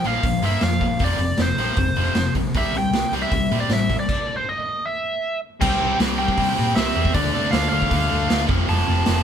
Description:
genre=punk rock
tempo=156 BPM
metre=4/4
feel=straight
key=unclear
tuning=A4 = 439 Hz
part: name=biting lead guitar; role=melody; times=0.0-9.2 s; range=C5 to A5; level=-24 LUFS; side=right 1 dB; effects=overdrive
part: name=distorted electric guitar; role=riff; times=0.0-9.2 s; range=F2 to D4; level=-27 LUFS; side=right 6 dB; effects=overdrive
part: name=tight distorted guitar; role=riff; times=0.0-9.2 s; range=F2 to D4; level=-27 LUFS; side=left 10 dB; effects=distortion
part: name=raw garage drum kit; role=drums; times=0.0-9.2 s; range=crash cymbal, hi-hat, kick drum, snare drum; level=-24 LUFS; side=equal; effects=none
part: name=hollow-body short-scale picked electric bass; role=bass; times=0.1-9.2 s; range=F1 to C3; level=-24 LUFS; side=equal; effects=none
part: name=overdriven electric guitar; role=riff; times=5.6-9.2 s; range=F2 to D4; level=-28 LUFS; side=equal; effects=none
room=light reverb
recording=band playing live in one room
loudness=-18 LUFS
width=side -8 dB against mid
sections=0.0-5.6 A section; 5.6-9.2 B section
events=stop 4.1-5.6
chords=0.0 Bb5; 1.0 F5; 2.5 C; 4.1 N.C.; 5.6 C; 7.2 Dm; 8.5 F

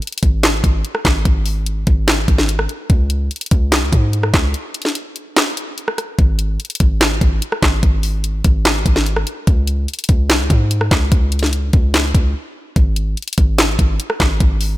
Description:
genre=hip hop, trap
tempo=146 BPM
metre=4/4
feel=half-time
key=unclear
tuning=A4 = 441 Hz
part: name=trap drum kit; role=drums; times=0.0-14.7 s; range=handclaps, hi-hat, kick drum, rim click, snare drum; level=-15 LUFS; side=equal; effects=none
part: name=hard-hitting 808-style bass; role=bass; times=0.2-14.8 s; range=G#1 to G#2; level=-18 LUFS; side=equal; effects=none
room=digital ambience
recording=none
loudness=-14 LUFS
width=side -16 dB against mid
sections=0.0-14.8 A section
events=break 4.5-6.2, 12.3-12.8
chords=none

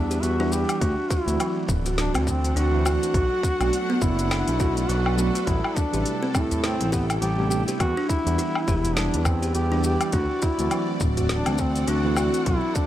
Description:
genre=organic downtempo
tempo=103 BPM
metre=4/4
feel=swing 58% on 16ths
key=unclear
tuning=A4 = 440 Hz
part: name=mellow duduk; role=melody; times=0.0-12.9 s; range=B3 to G4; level=-27 LUFS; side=equal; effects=vintage 12-bit sampler grit, tape echo, shimmer reverb
part: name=tine electric piano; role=accompaniment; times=0.0-12.5 s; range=C3 to F#5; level=-31 LUFS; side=right 2 dB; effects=overdrive, medium stereo tremolo, sidechain pumping, digital delay, shimmer reverb
part: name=bowed-like drone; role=sustained chords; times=0.0-12.9 s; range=G3 to G5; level=-34 LUFS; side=right 1 dB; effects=built-in reverb, sidechain pumping, shimmer reverb
part: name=smooth gliding synth bass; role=bass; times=0.0-12.6 s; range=D1 to A2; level=-25 LUFS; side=equal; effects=none
part: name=buzzing kalimba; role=arpeggios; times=0.1-12.6 s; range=F#3 to G4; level=-29 LUFS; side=equal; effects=digital delay, shimmer reverb
part: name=deep house drum kit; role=drums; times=0.1-12.9 s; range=hi-hat, shaker, snare drum, woodblock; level=-30 LUFS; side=left 2 dB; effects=small room ambience
part: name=electronic kick drum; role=drums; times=0.8-12.9 s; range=none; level=-25 LUFS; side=equal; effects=small room ambience
part: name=udu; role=percussion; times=6.5-11.3 s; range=none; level=-30 LUFS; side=right 1 dB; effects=none
room=light reverb, digital ambience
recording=none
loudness=-21 LUFS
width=side -12 dB against mid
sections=0.0-12.9 A section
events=none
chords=0.0 Em7; 0.8 D7; 3.1 Bm7; 5.5 Am7; 7.8 Em7; 10.1 D7

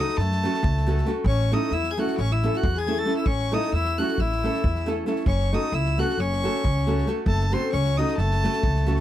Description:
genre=balkan folk, Balkan wedding band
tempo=270 BPM (eighths)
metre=9/8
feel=straight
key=F# minor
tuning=A4 = 441 Hz
part: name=clear violin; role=melody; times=0.0-9.0 s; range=A5 to A6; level=-30 LUFS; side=right 1 dB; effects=none
part: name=accordion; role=second line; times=0.0-9.0 s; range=A3 to A4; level=-29 LUFS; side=left 6 dB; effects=none
part: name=nylon-string guitar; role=accompaniment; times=0.0-9.0 s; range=A3 to A4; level=-27 LUFS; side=right 1 dB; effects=none
part: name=natural country drum kit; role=percussion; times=0.1-9.0 s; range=kick drum, snare drum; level=-30 LUFS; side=equal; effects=none
part: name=upright bass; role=bass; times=0.2-9.0 s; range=F#1 to F#2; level=-24 LUFS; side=right 1 dB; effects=none
room=little or no reverb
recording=dry, close 1970s-style studio recording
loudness=-21 LUFS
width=side -12 dB against mid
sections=0.0-9.0 A section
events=none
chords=0.0 F#m; 1.3 A; 5.3 F#m

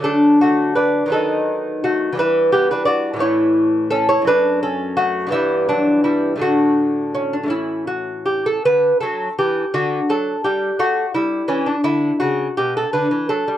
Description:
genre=classical, baroque-style dance for lute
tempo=56 BPM (dotted quarters)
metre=6/8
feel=rubato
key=D major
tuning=A4 = 439 Hz
part: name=lute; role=solo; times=0.0-13.6 s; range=F#2 to D5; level=-16 LUFS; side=equal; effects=none
room=light reverb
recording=dry, close 1970s-style studio recording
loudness=-16 LUFS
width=side -12 dB against mid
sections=0.0-8.7 A section; 8.7-13.6 B section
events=none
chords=0.0 D; 1.1 B7/D#; 2.2 Em; 3.2 A; 4.3 D/F#; 5.3 Em/G; 6.4 D/A; 7.5 A; 8.7 D; 10.8 A5; 11.9 Bm11; 12.9 Bm/D

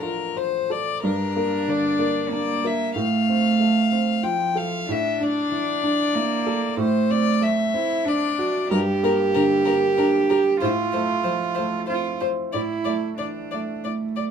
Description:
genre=neoclassical piano and strings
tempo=94 BPM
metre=3/4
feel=rubato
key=unclear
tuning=A4 = 440 Hz
part: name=rich violin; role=melody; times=0.0-14.2 s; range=Bb4 to G5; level=-26 LUFS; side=left 6 dB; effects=none
part: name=warm cello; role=second line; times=0.0-14.3 s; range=F3 to G4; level=-23 LUFS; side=right 4 dB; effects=none
part: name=felt-muted upright piano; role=accompaniment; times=0.0-14.3 s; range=A1 to D5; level=-25 LUFS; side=equal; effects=none
room=light reverb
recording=minimal, uncompressed stereo recording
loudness=-20 LUFS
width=side -7 dB against mid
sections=0.0-1.0 A section; 1.0-14.3 B section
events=none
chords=0.0 Dm7/A; 1.0 Gm; 3.0 F/A; 4.9 Asus4; 6.8 D7/A; 8.7 Gm; 10.6 F/A; 12.5 Asus4

